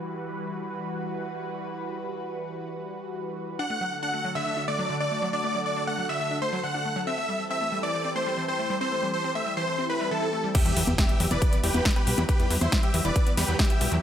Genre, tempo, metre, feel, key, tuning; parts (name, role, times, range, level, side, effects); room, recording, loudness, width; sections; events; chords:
uplifting trance; 138 BPM; 4/4; straight; E minor; A4 = 440 Hz
lush unison pad; sustained chords; 0.0-14.0 s; D3 to B4; -34 LUFS; equal; chorus, phaser, vintage 12-bit sampler grit, sidechain pumping
big supersaw lead; melody; 3.6-14.0 s; E4 to F#5; -28 LUFS; equal; sidechain pumping, digital delay
wide unison pluck; arpeggios; 3.6-14.0 s; D3 to D4; -33 LUFS; left 1 dB; sidechain pumping, digital delay
swell and impact; sound effects; 9.8-12.3 s; -35 LUFS; equal
big-room dance drum kit; drums; 10.5-14.0 s; congas, crash cymbal, hi-hat, snare drum; -28 LUFS; left 1 dB; sidechain pumping on hats, sidechain pumping on cymbals, sidechain pumping on perc
electronic kick drum; drums; 10.5-13.7 s; -23 LUFS; equal
plucky analog bass; bass; 10.7-14.0 s; E1 to E2; -26 LUFS; equal; sidechain pumping
light reverb, digital ambience; -24 LUFS; side -10 dB against mid
0.0-10.5 A section; 10.5-14.0 B section
swell 9.8-10.5; drop 10.5-14.0; impact 10.5-12.3
0.0 Emadd9; 3.6 D; 7.1 Am7; 10.5 Em